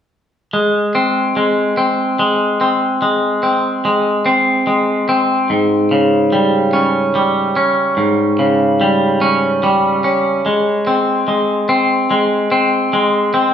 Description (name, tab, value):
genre	rock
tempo	48 BPM (dotted quarters)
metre	6/8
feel	straight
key	Ab major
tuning	A4 = 439 Hz
part	twangy electric guitar	arpeggios	0.5-13.5 s	Ab2 to Db4	-12 LUFS	equal	digital delay
room	wet large studio reverb, RT60 0.9 s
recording	band playing live in one room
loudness	-12 LUFS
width	side -8 dB against mid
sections	0.5-13.5 A section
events	none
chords	0.5 Ab; 5.5 Absus4; 10.5 Ab